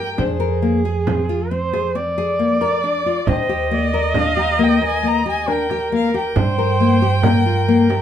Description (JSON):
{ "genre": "contemporary instrumental, chamber music in an uneven meter", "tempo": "136 BPM", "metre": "7/4", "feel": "straight", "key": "unclear", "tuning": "A4 = 440 Hz", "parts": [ { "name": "rich violin", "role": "melody", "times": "0.0-8.0 s", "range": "C5 to Bb5", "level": "-24 LUFS", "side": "left 5 dB", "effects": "none" }, { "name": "warm viola", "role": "second line", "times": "0.0-8.0 s", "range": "Ab4 to Eb5", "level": "-21 LUFS", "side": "right 3 dB", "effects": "none" }, { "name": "nylon-string guitar", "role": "arpeggios", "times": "0.0-8.0 s", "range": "Bb3 to Bb4", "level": "-20 LUFS", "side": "left 5 dB", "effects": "none" }, { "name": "upright bass", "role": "bass", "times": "0.0-8.0 s", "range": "Eb2 to G2", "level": "-22 LUFS", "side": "right 4 dB", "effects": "none" }, { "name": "frame drum", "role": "percussion", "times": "0.2-8.0 s", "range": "none", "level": "-24 LUFS", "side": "right 4 dB", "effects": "none" }, { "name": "celesta", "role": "texture", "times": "3.3-7.1 s", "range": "G5 to C6", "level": "-31 LUFS", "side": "left 5 dB", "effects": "none" } ], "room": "moderate studio reverb, RT60 0.5 s", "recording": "none", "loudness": "-15 LUFS", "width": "side -10 dB against mid", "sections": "0.0-8.0 A section", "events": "none", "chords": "0.2 Bb9/F; 3.3 Ebmaj7; 6.4 Gm", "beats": "| 0.19 0.63 1.07 1.51 1.95 2.39 2.83 | 3.27 3.71 4.15 4.59 5.04 5.48 5.92 | 6.36 6.80 7.24 7.68" }